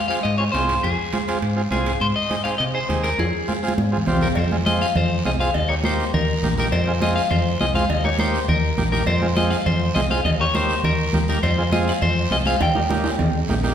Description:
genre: latin, cumbia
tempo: 204 BPM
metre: 4/4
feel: straight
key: F minor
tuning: A4 = 439 Hz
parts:
  - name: electric guitar at the edge of break-up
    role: melody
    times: 0.0-13.5 s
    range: Ab4 to G5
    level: -23 LUFS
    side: left 3 dB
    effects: spring reverb
  - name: combo organ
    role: accompaniment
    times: 0.1-13.7 s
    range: Bb3 to Ab4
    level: -26 LUFS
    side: right 2 dB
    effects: none
  - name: guiro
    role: percussion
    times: 0.1-13.7 s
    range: none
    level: -35 LUFS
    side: right 4 dB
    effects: none
  - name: timbales and cowbell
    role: percussion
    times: 0.1-13.7 s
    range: none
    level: -31 LUFS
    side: right 2 dB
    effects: none
  - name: fingered electric bass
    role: bass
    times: 0.2-13.7 s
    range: Bb1 to C3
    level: -23 LUFS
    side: equal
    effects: none
  - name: congas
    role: percussion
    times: 0.2-13.7 s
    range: none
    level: -25 LUFS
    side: right 1 dB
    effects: none
room: wet recital hall reverb, RT60 1.5 s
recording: recorded in a church or concert hall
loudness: -18 LUFS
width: side -9 dB against mid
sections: 0.0-4.4 A section; 4.4-13.7 B section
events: drum fill 3.2-4.4, 12.6-13.7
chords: 0.0 Fm; 2.0 Ab; 3.2 Fm; 5.5 Eb; 6.7 Fm; 7.9 Eb; 9.1 Fm; 10.3 Eb; 11.4 Fm; 12.6 Eb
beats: 0.25 0.54 | 0.83 1.13 1.42 1.72 | 2.01 2.31 2.60 2.90 | 3.19 3.48 3.78 4.07 | 4.37 4.66 4.96 5.25 | 5.54 5.84 6.13 6.43 | 6.72 7.02 7.31 7.61 | 7.90 8.19 8.49 8.78 | 9.08 9.37 9.66 9.96 | 10.25 10.55 10.84 11.13 | 11.43 11.72 12.02 12.31 | 12.61 12.90 13.19 13.49

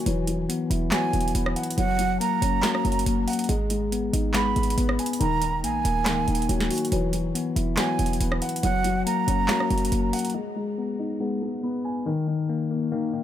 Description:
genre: hip hop, trap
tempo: 140 BPM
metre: 4/4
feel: half-time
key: G# minor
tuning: A4 = 440 Hz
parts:
  - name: breathy concert flute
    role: second line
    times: 0.0-10.3 s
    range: F#5 to B5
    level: -29 LUFS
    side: right 6 dB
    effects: ping-pong delay
  - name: dark grand piano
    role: accompaniment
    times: 0.0-13.2 s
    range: D#3 to G#5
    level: -30 LUFS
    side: left 1 dB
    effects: low-pass filter
  - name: tine electric piano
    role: arpeggios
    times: 0.0-13.2 s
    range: D#3 to B3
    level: -28 LUFS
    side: left 6 dB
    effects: low-pass filter, ping-pong delay
  - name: short 808-style bass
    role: bass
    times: 0.1-10.1 s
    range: D#1 to A#1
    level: -27 LUFS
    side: right 1 dB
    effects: none
  - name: booming analog drum machine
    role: drums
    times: 0.1-10.3 s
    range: handclaps, hi-hat, rim click, snare drum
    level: -29 LUFS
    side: right 1 dB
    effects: none
room: light reverb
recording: none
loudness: -22 LUFS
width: side -11 dB against mid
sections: 0.0-10.3 A section; 10.3-13.2 B section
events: none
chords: 0.1 Esus2; 1.8 F#; 3.5 G#m; 5.2 D#m; 6.9 Esus2; 8.6 F#; 10.3 G#m; 12.1 D#5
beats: | 0.06 0.49 0.92 1.35 | 1.78 2.21 2.63 3.06 | 3.49 3.92 4.35 4.78 | 5.21 5.63 6.06 6.49 | 6.92 7.35 7.78 8.21 | 8.63 9.06 9.49 9.92 | 10.35 10.78 11.21 11.63 | 12.06 12.49 12.92

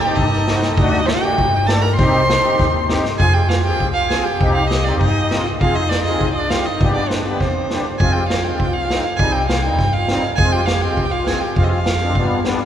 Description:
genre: klezmer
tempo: 100 BPM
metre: 2/4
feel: straight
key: C dorian sharp4, F dorian sharp4 from 3.2 s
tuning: A4 = 445 Hz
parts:
  - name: rich violin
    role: melody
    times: 0.0-12.4 s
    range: B4 to C6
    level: -20 LUFS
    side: right 2 dB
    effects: none
  - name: warm clarinet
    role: second line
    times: 0.0-12.4 s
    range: B3 to C5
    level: -25 LUFS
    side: left 2 dB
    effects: none
  - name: musette accordion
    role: accompaniment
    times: 0.0-12.6 s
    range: G3 to A4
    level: -22 LUFS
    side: left 1 dB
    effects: none
  - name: upright bass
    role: bass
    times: 0.2-12.5 s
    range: C2 to G2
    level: -21 LUFS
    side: equal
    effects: none
  - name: street-band drum kit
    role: drums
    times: 0.2-12.6 s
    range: kick drum, snare drum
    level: -21 LUFS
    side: equal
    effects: none
room: wet cathedral reverb, RT60 7.3 s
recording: recorded in a church or concert hall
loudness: -15 LUFS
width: side -10 dB against mid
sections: 0.0-3.2 A section; 3.2-12.7 B section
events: speeding up 0.0-12.7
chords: 0.0 Cm; 0.8 D; 2.0 Cm; 3.2 Fm; 4.4 Cm; 5.6 Fm; 6.8 G; 8.0 Fm; 9.2 Cm; 10.4 Fm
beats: 0.17 | 0.78 1.38 | 1.99 2.59 | 3.20 3.80 | 4.40 5.01 | 5.61 6.21 | 6.81 7.41 | 8.00 8.60 | 9.20 9.79 | 10.38 10.97 | 11.56 12.15

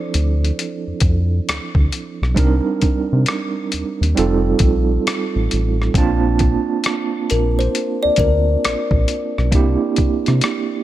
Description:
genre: R&B, neo-soul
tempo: 67 BPM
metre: 4/4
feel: swing 63% on 16ths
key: unclear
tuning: A4 = 440 Hz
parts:
  - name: kalimba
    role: melody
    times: 0.0-1.9, 7.3-9.0 s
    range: Bb4 to D5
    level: -22 LUFS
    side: left 4 dB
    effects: none
  - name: overdriven tine electric piano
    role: accompaniment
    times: 0.0-10.8 s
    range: F3 to A5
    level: -21 LUFS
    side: right 6 dB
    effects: fast tremolo
  - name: round analog bass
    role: bass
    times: 0.1-10.4 s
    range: F1 to C3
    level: -18 LUFS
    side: equal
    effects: none
  - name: boom bap sampler-style drum kit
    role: drums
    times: 0.1-10.7 s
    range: hi-hat, kick drum, rim click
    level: -19 LUFS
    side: equal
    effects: none
room: little or no reverb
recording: none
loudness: -15 LUFS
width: side -13 dB against mid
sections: 0.0-10.8 A section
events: none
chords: 0.0 Dm7; 2.4 Cm7; 4.2 F7; 5.9 Bbmaj7; 9.5 C7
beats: 0.57 1.47 | 2.36 3.26 4.15 5.05 | 5.95 6.84 7.74 8.63 | 9.53 10.42

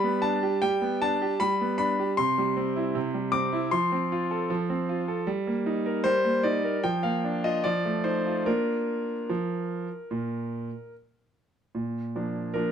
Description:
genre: classical-period piano sonatina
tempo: 75 BPM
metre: 4/4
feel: uneven beats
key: Bb major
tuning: A4 = 440 Hz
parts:
  - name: clear concert grand piano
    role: solo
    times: 0.0-12.7 s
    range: Bb2 to D6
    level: -25 LUFS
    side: equal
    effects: none
room: light reverb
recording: close, detailed microphones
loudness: -25 LUFS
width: side -8 dB against mid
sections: 0.0-11.7 A section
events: none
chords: 0.0 G; 2.2 C; 3.7 F; 5.3 Eb/G; 6.8 Bb/F; 7.6 F7; 8.5 Bb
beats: 0.62 1.40 | 2.18 2.96 3.73 4.50 | 5.28 6.06 6.84 7.65 | 8.47 9.30 10.11 10.93 | 11.75 12.54

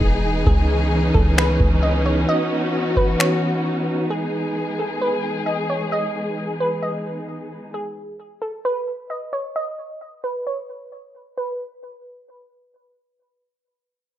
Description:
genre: hip hop, atmospheric cloud-rap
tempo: 132 BPM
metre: 4/4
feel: half-time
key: E major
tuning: A4 = 440 Hz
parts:
  - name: glassy wavetable pluck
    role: melody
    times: 0.0-12.7 s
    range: G#4 to D#5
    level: -26 LUFS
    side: right 1 dB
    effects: chorus, low-pass filter, digital delay
  - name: warm symphonic string section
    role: sustained chords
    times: 0.0-7.7 s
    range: E3 to G#4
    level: -22 LUFS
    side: equal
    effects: sidechain pumping, low-pass filter
  - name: soft 808-style bass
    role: bass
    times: 0.0-2.3 s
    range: E1 to C#2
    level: -20 LUFS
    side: equal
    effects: none
  - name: booming analog drum machine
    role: drums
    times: 0.0-3.3 s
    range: finger snaps, kick drum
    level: -19 LUFS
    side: equal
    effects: none
  - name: downlifter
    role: sound effects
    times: 0.0-0.5 s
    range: none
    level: barely audible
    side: none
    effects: none
room: light reverb, digital ambience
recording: rough home demo mix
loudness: -19 LUFS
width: side -12 dB against mid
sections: 0.0-11.4 A section; 11.4-14.2 B section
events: break 0.0-4.1; filter sweep 0.0-11.4; kick muted 3.2-4.1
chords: 0.5 C#m9; 4.1 Emaj7; 7.7 N.C.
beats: 0.01 | 0.47 0.92 1.38 1.83 | 2.29 2.74 3.19 3.65 | 4.10 4.56 5.01 5.47 | 5.92 6.38 6.83 7.29 | 7.74 8.19 8.65 9.10 | 9.56 10.01 10.47 10.92 | 11.38 11.83 12.29

